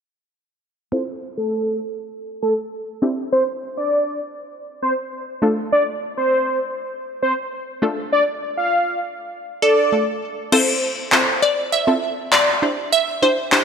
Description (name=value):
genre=dance-pop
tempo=100 BPM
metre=4/4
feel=straight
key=F major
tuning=A4 = 439 Hz
part: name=wide unison lead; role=melody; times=0.9-10.0 s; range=A4 to F5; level=-21 LUFS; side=equal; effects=low-pass filter
part: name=punchy chord stab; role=accompaniment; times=0.9-13.6 s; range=A3 to C5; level=-22 LUFS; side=left 1 dB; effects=chorus, low-pass filter
part: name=glassy wavetable pluck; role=melody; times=9.6-13.6 s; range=A4 to E5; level=-18 LUFS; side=right 1 dB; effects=chorus, digital delay
part: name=house drum kit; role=drums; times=10.5-13.6 s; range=crash cymbal, handclaps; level=-18 LUFS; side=left 1 dB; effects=overdrive, gated reverb
room=moderate lush hall reverb, RT60 2.9 s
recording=bright 1980s-style digital production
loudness=-17 LUFS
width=side -6 dB against mid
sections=0.9-10.5 A section; 10.5-13.6 B section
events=filter sweep 0.9-10.5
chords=0.9 Fmaj7; 3.0 Cadd9; 5.4 Dm; 10.5 Fmaj7; 12.6 Cadd9